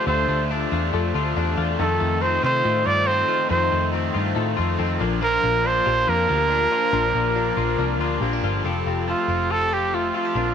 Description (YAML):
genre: indie pop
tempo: 140 BPM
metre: 4/4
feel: straight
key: unclear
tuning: A4 = 438 Hz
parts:
  - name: warm trumpet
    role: melody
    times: 0.0-10.5 s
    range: F4 to D5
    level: -22 LUFS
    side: right 3 dB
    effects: none
  - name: biting overdriven guitar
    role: accompaniment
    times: 0.0-10.5 s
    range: F2 to A4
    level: -30 LUFS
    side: right 14 dB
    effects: none
  - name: warm analog keys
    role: accompaniment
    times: 0.0-10.5 s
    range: C4 to C5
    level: -29 LUFS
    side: left 14 dB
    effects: chorus
  - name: twelve-string electric guitar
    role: arpeggios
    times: 0.0-10.5 s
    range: Eb3 to G4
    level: -27 LUFS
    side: left 12 dB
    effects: none
  - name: vintage muted picked electric bass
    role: bass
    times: 0.1-10.5 s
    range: F1 to C3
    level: -26 LUFS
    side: equal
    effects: none
room: light reverb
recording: 1960s-style stereo with parts hard left and right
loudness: -19 LUFS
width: side -8 dB against mid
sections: 0.0-8.6 A section; 8.6-10.5 B section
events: none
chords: 0.0 Dm; 1.8 F7; 5.0 Bb; 8.6 Fadd9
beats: | 0.08 0.51 0.93 1.36 | 1.79 2.22 2.65 3.08 | 3.50 3.93 4.36 4.79 | 5.22 5.64 6.07 6.50 | 6.93 7.36 7.79 8.21 | 8.64 9.07 9.50 9.93 | 10.36